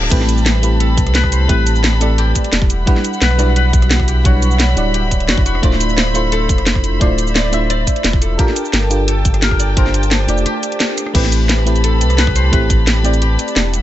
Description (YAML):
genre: liquid drum and bass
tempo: 174 BPM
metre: 4/4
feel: straight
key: A minor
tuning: A4 = 443 Hz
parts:
  - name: mellow FM electric piano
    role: accompaniment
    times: 0.0-13.8 s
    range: G3 to F#5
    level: -20 LUFS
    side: right 1 dB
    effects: chorus, tremolo, cassette tape, dub echo
  - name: dark studio string section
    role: sustained chords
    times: 0.0-13.8 s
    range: G3 to B5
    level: -23 LUFS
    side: left 2 dB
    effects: sidechain pumping
  - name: concert harp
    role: arpeggios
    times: 0.0-13.8 s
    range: F#4 to E5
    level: -24 LUFS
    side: left 4 dB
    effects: dub echo
  - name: warm sub bass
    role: bass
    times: 0.0-13.8 s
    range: D1 to C2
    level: -15 LUFS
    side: equal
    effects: none
  - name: garage drum kit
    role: drums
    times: 0.0-13.8 s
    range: crash cymbal, hi-hat, rim click, shaker, snare drum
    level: -18 LUFS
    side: equal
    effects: none
  - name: electronic kick drum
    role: drums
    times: 0.1-12.8 s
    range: none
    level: -15 LUFS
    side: equal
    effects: none
room: little or no reverb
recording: nothing above 7.9 kHz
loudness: -12 LUFS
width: side -13 dB against mid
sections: 0.0-11.1 A section; 11.1-13.8 A section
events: drop 0.0-11.1, 11.1-13.8; break 10.5-11.1; band accent 10.8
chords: 0.1 Am9; 2.7 Em9; 5.6 Dm9; 8.4 Gm9; 11.1 Am9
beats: | 0.11 0.46 0.80 1.15 | 1.49 1.84 2.18 2.53 | 2.87 3.22 3.56 3.91 | 4.25 4.60 4.94 5.29 | 5.63 5.98 6.32 6.67 | 7.01 7.36 7.70 8.04 | 8.39 8.73 9.08 9.42 | 9.77 10.11 10.46 10.80 | 11.15 11.49 11.84 12.18 | 12.53 12.87 13.22 13.56